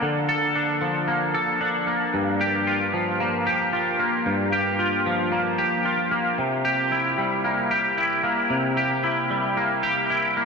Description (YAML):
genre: rock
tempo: 113 BPM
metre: 4/4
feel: straight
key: unclear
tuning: A4 = 443 Hz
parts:
  - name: twangy electric guitar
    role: solo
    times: 0.0-10.4 s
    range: G2 to A4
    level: -21 LUFS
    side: equal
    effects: analog chorus, analog delay
room: wet huge ambient reverb, RT60 7.1 s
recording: dreamy mix soaked in reverb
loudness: -21 LUFS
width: side -4 dB against mid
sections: 0.0-10.4 A section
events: none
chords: 0.0 Bbmaj7/D; 2.1 Gm7; 6.4 C7